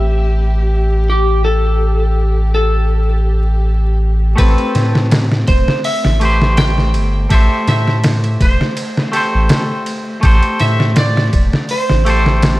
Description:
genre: trip hop.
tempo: 82 BPM.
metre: 4/4.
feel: swing 54% on 16ths.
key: A minor.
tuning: A4 = 438 Hz.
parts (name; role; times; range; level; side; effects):
clean lap steel guitar; melody; 0.0-12.4 s; G4 to G5; -21 LUFS; left 1 dB; tape echo.
clean electric guitar; accompaniment; 0.0-12.6 s; A3 to C5; -19 LUFS; equal; harmonic tremolo, vintage 12-bit sampler grit, tape echo.
warm chamber violin section; sustained chords; 0.0-4.4 s; G4; -25 LUFS; left 1 dB; none.
soft dub sub bass; bass; 0.0-12.6 s; E1 to A2; -14 LUFS; equal; none.
trip hop sampler-style drum kit; drums; 4.4-12.6 s; hi-hat, kick drum, ride cymbal, snare drum; -15 LUFS; equal; none.
room: digital ambience.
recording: vinyl crackle.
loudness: -12 LUFS.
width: side -17 dB against mid.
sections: 0.0-4.4 A section; 4.4-12.6 B section.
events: none.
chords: 0.0 Am9.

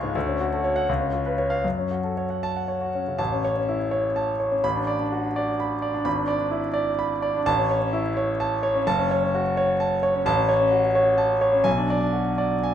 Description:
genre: classical, virtuoso piano study.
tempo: 76-88 BPM (dotted quarters).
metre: 6/8.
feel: rubato.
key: F# minor, A major from 3.2 s, F# minor from 8.9 s.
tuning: A4 = 439 Hz.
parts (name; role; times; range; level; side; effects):
clear concert grand piano; solo; 0.0-12.7 s; F#1 to C#6; -21 LUFS; equal; none.
room: moderate recital hall reverb, RT60 1.5 s.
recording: minimal, uncompressed stereo recording.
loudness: -21 LUFS.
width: side -9 dB against mid.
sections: 0.0-3.2 A section; 3.2-12.7 B section.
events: none.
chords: 0.2 Dmaj7; 0.9 C#7; 1.6 F#m; 3.2 A; 4.6 Bm7/A; 6.1 E7/G#; 7.5 A; 8.9 F#m; 10.3 F#m/A; 11.7 G#m7b5/B.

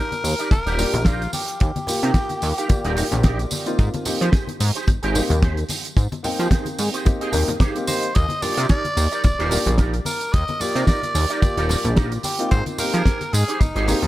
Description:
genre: nu-disco, nu disco.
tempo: 110 BPM.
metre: 4/4.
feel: swing 55% on 16ths.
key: Eb major.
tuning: A4 = 440 Hz.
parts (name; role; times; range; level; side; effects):
growling tenor saxophone; melody; 0.0-3.5, 7.9-14.1 s; Eb4 to Eb5; -26 LUFS; equal; analog delay.
electric guitar with an envelope filter; riff; 0.0-14.0 s; Eb4 to G5; -29 LUFS; right 3 dB; ensemble chorus, analog delay.
damped 70s drum kit; drums; 0.1-14.1 s; hi-hat, rim click, snare drum, tambourine; -26 LUFS; right 2 dB; none.
congas; percussion; 0.1-14.1 s; none; -31 LUFS; left 2 dB; none.
chorused synth bass; bass; 0.2-14.1 s; Eb1 to F3; -21 LUFS; equal; none.
kick drum; drums; 0.5-13.7 s; none; -17 LUFS; equal; none.
warm concert grand piano; accompaniment; 0.8-14.0 s; Bb3 to G5; -28 LUFS; left 2 dB; sidechain pumping, analog delay.
room: light reverb, small room ambience.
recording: echo-heavy mix.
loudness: -18 LUFS.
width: side -15 dB against mid.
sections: 0.0-14.1 A section.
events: clean electric guitar fill 7.1-8.2.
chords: 0.0 Ebmaj7; 3.8 Abmaj7; 8.2 Ebmaj7; 12.5 Abmaj7.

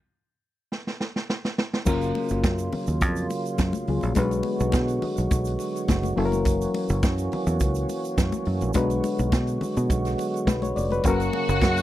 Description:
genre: disco.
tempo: 105 BPM.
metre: 4/4.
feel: straight.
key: F# major.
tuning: A4 = 440 Hz.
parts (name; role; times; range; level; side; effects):
vintage drum kit; drums; 0.7-11.8 s; crash cymbal, hi-hat, kick drum, snare drum; -25 LUFS; right 1 dB; none.
reed electric piano; accompaniment; 1.9-11.8 s; F#3 to D5; -28 LUFS; left 4 dB; none.
tonewheel organ; sustained chords; 1.9-11.8 s; C#3 to F#4; -29 LUFS; right 2 dB; overdrive, chorus vibrato, slow rotary speaker.
fingered electric bass; bass; 1.9-11.8 s; E#1 to B2; -26 LUFS; right 1 dB; none.
congas; percussion; 1.9-11.8 s; none; -32 LUFS; left 6 dB; none.
tube shaker; percussion; 1.9-11.8 s; none; -42 LUFS; right 17 dB; none.
rich studio string section; second line; 11.0-11.8 s; F#4 to F#5; -26 LUFS; left 2 dB; none.
room: little or no reverb.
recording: dry, close 1970s-style studio recording.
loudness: -22 LUFS.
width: side -14 dB against mid.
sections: 0.0-1.9 A section; 1.9-11.8 B section.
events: stop 0.0-1.9; drum fill 0.7-1.9.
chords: 0.0 N.C.; 1.9 F#maj7; 4.2 Bm6; 6.2 F#7; 8.8 Bm6; 11.0 F#.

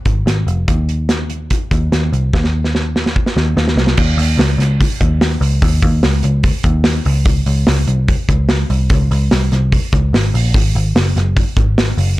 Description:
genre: jangly indie pop.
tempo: 146 BPM.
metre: 4/4.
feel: straight.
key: unclear.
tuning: A4 = 440 Hz.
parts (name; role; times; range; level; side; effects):
vintage muted picked electric bass; bass; 0.1-12.2 s; F1 to Eb2; -14 LUFS; equal; none.
modern studio drum kit; drums; 0.1-12.1 s; crash cymbal, hi-hat, kick drum, snare drum; -16 LUFS; equal; none.
room: little or no reverb.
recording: blown-out, overdriven recording, overdrive.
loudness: -12 LUFS.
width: side -18 dB against mid.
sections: 0.0-4.0 A section; 4.0-12.2 B section.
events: drum fill 2.3-4.0.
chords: none.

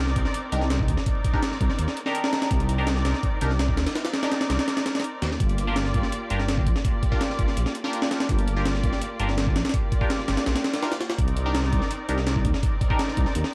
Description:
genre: drum and bass, jungle.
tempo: 166 BPM.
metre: 4/4.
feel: straight.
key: unclear.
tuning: A4 = 438 Hz.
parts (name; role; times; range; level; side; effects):
muted studio string section; sustained chords; 0.0-13.5 s; Eb3 to D5; -34 LUFS; equal; vintage 12-bit sampler grit.
dark detuned saw bass; bass; 0.0-13.4 s; G1 to Eb2; -28 LUFS; equal; tube saturation.
breakbeat sampler-style drum kit; drums; 0.1-13.5 s; hi-hat, kick drum, snare drum; -27 LUFS; equal; none.
band-passed chord stab; stabs; 0.5-13.0 s; D4 to Bb4; -34 LUFS; equal; phaser, dub echo.
room: little or no reverb.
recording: dry, gritty hardware recording, vinyl crackle.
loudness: -25 LUFS.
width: mono.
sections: 0.0-13.5 A section.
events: none.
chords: 0.0 Cm9; 5.4 Gm7; 11.2 Cm9.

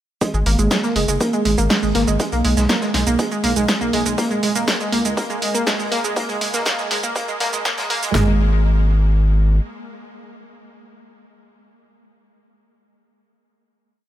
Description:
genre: melodic techno.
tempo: 121 BPM.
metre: 4/4.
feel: straight.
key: G# minor.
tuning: A4 = 440 Hz.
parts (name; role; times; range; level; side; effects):
analog pluck; arpeggios; 0.2-8.4 s; G#3 to A#3; -21 LUFS; right 2 dB; chorus, sidechain pumping, ping-pong delay.
deep house drum kit; drums; 0.2-8.3 s; kick drum, snare drum, toms; -24 LUFS; equal; high-pass filter on kick, high-pass filter on snare, high-pass filter on toms.
punchy analog drum machine; drums; 0.2-8.1 s; hi-hat, shaker, snare drum; -23 LUFS; right 1 dB; high-pass filter on perc, high-pass filter on hats, high-pass filter on snare, high-pass filter on room.
raw garage drum kit; drums; 0.2-8.1 s; hi-hat, snare drum; -32 LUFS; left 1 dB; sidechain pumping on hats, high-pass filter on hats, high-pass filter on snare, high-pass filter on room.
round analog bass; bass; 0.3-9.6 s; D#1 to C#2; -18 LUFS; equal; sidechain pumping.
room: light reverb.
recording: high-pass filter.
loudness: -16 LUFS.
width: side -12 dB against mid.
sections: 0.2-8.1 build; 8.1-12.1 final chord.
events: build-up 0.2-8.1; filter sweep 0.2-8.1.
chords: 0.2 G#sus2; 2.2 G#madd9/B; 4.2 D#5; 6.2 F#; 8.1 N.C..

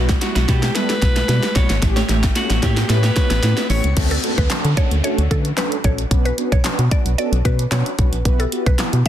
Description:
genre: dance-pop.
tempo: 112 BPM.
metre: 4/4.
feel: straight.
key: D major.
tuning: A4 = 440 Hz.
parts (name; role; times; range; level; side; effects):
mellow synth brass; accompaniment; 0.0-9.1 s; G3 to B4; -25 LUFS; right 1 dB; chorus, sidechain pumping.
twelve-string electric guitar; riff; 0.0-3.9 s; G3 to C#5; -30 LUFS; right 6 dB; lush chorus.
organ-like FM bass; bass; 0.0-9.0 s; G#1 to D3; -18 LUFS; equal; sidechain pumping.
riser and downlifter; sound effects; 0.5-8.3 s; none; -30 LUFS; left 1 dB; none.
pop drum kit; drums; 0.1-9.1 s; crash cymbal, handclaps, hi-hat, kick drum, snare drum; -19 LUFS; equal; none.
breathy alto saxophone; melody; 0.2-3.9 s; F#4 to C#5; -25 LUFS; left 1 dB; digital delay.
mallet-like synth pluck; melody; 4.1-9.1 s; A4 to D5; -27 LUFS; equal; chorus, digital delay.
room: little or no reverb.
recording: dense, heavily limited modern master.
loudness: -15 LUFS.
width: side -11 dB against mid.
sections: 0.0-4.0 A section; 4.0-9.1 B section.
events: build-up 0.0-4.0; drum fill 0.0-4.0; drop 4.0-9.1.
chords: 0.0 Emadd9/B; 1.8 A7; 4.0 Dmaj7; 8.3 Emadd9/B.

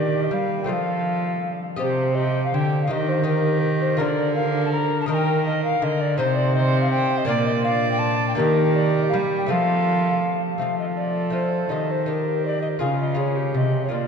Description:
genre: classical, renaissance-style consort dance.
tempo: 164 BPM.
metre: 3/4.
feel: straight.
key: F mixolydian.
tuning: A4 = 440 Hz.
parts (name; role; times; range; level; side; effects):
mellow hollow alto recorder; melody; 0.0-14.1 s; Bb4 to Bb5; -24 LUFS; left 3 dB; none.
warm viola; second line; 0.0-14.1 s; F4 to D5; -28 LUFS; right 4 dB; none.
lute; accompaniment; 0.0-14.1 s; Bb2 to Eb5; -27 LUFS; left 2 dB; none.
rich cello; bass; 0.0-14.1 s; Bb2 to G3; -24 LUFS; right 2 dB; none.
room: wet cathedral reverb, RT60 5.2 s.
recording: dark, warm production.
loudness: -19 LUFS.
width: side -6 dB against mid.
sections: 0.0-1.8 A section; 1.8-10.6 A section; 10.6-14.1 B section.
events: none.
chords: 0.0 Eb; 0.7 F; 1.8 Cm; 2.9 Eb; 4.0 Bb/D; 5.1 Eb; 6.2 Cm; 7.3 Bb; 8.4 Eb; 9.5 F; 11.7 Eb; 12.8 Db.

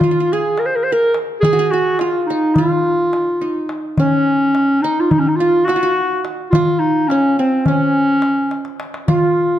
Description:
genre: Turkish makam ensemble.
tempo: 212 BPM (eighths).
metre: 9/8.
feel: straight.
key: F makam kurdi.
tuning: A4 = 440 Hz.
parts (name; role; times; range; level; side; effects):
warm clarinet; melody; 0.0-9.6 s; C4 to C5; -15 LUFS; equal; none.
qanun; second line; 0.0-9.6 s; C4 to Bb4; -22 LUFS; right 4 dB; none.
darbuka; percussion; 0.0-9.4 s; none; -20 LUFS; left 1 dB; none.
room: light reverb.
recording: dark, warm production.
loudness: -14 LUFS.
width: side -11 dB against mid.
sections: 0.0-9.6 A section.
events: drum fill 8.5-9.1.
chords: none.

